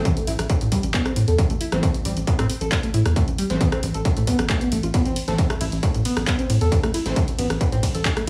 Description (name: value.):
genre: driving peak-time techno.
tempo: 135 BPM.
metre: 4/4.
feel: straight.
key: A minor.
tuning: A4 = 440 Hz.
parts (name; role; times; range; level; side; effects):
rave stab; stabs; 0.0-7.2 s; E3 to C4; -32 LUFS; equal; chorus, built-in reverb, sidechain pumping, tape echo.
tight sequencer bass; bass; 0.0-8.3 s; A1 to A2; -25 LUFS; equal; sidechain pumping.
electronic kick drum; drums; 0.1-8.1 s; none; -24 LUFS; equal; distortion, overdrive.
punchy analog drum machine; drums; 0.1-8.3 s; handclaps, hi-hat, ride cymbal, rim click; -31 LUFS; equal; none.
overdriven synth lead; riff; 0.2-8.3 s; G3 to A4; -29 LUFS; equal; chorus, tube saturation, sidechain pumping, tape echo.
room: light reverb.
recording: studio reverb.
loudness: -21 LUFS.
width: mono.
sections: 0.0-8.3 A section.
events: none.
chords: 0.0 Am.